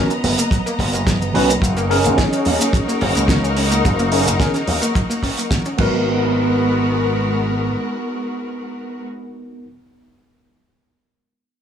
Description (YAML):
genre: nu-disco, nu disco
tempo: 108 BPM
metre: 4/4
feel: straight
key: G# minor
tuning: A4 = 441 Hz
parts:
  - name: tine electric piano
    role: accompaniment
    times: 0.0-9.7 s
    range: B3 to C#5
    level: -22 LUFS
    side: right 1 dB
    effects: overdrive, fast stereo tremolo, sidechain pumping, analog delay
  - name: rich studio string section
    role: sustained chords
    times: 0.0-9.0 s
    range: G#3 to A#5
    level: -23 LUFS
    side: left 2 dB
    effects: sidechain pumping
  - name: analog pluck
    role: arpeggios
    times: 0.1-6.3 s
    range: F#3 to C#4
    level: -23 LUFS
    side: right 1 dB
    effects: chorus, sidechain pumping, analog delay
  - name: damped 70s drum kit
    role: drums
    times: 0.1-5.9 s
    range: crash cymbal, hi-hat, shaker, snare drum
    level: -23 LUFS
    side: right 2 dB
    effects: studio ambience
  - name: slap bass with an envelope filter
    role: bass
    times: 0.2-7.7 s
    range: F#1 to D#2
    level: -20 LUFS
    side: equal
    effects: none
  - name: kick drum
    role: drums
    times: 0.5-5.9 s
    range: none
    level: -19 LUFS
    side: equal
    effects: studio ambience
room: light reverb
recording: dry, gritty hardware recording, small room ambience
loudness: -15 LUFS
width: side -8 dB against mid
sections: 0.0-6.1 A section; 6.1-8.3 B section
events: drop 0.0-6.1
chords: 0.0 Bmaj7; 1.6 F#6; 5.8 G#m9